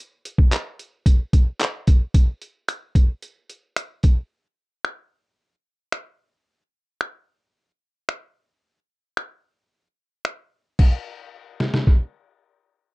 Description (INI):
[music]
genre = pop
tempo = 111 BPM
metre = 4/4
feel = straight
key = none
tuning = none
[part]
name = trip hop sampler-style drum kit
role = drums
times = 0.3-12.0 s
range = crash cymbal, finger snaps, handclaps, hi-hat, kick drum, snare drum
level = -17 LUFS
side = equal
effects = none
[sound]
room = little or no reverb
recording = dry, close 1970s-style studio recording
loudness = -20 LUFS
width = side -25 dB against mid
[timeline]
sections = 0.0-2.1 A section; 2.1-10.8 B section; 10.8-12.9 C section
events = none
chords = none